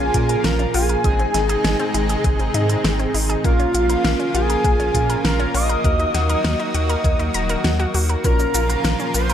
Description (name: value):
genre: synthwave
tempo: 100 BPM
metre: 4/4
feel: straight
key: Bb minor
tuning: A4 = 442 Hz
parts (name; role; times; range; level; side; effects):
- expressive synth lead; melody; 0.0-9.3 s; F4 to Eb5; -24 LUFS; equal; wide subtle chorus, tape echo
- airy dreamy lead; second line; 0.0-9.3 s; F5 to Eb6; -28 LUFS; equal; chorus, tape echo
- lush unison pad; sustained chords; 0.0-9.3 s; C3 to Gb4; -26 LUFS; equal; chorus, sidechain pumping
- analog pluck; arpeggios; 0.0-9.3 s; Ab3 to Bb5; -28 LUFS; left 3 dB; chorus, tape echo
- analog synth brass; stabs; 0.0-9.3 s; Ab2 to Bb4; -28 LUFS; right 3 dB; chorus
- round analog bass; bass; 0.0-9.3 s; Eb1 to Bb2; -22 LUFS; equal; sidechain pumping
- electronic kick drum; drums; 0.1-8.4 s; none; -20 LUFS; equal; none
- pop drum kit; drums; 0.1-9.3 s; cabasa, hi-hat, snare drum; -24 LUFS; right 1 dB; none
room: light reverb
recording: none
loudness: -16 LUFS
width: side -10 dB against mid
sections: 0.0-9.3 A section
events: none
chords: 0.0 Bbm; 1.0 Ab; 3.4 Bbm; 5.8 Ebm; 8.2 Bbm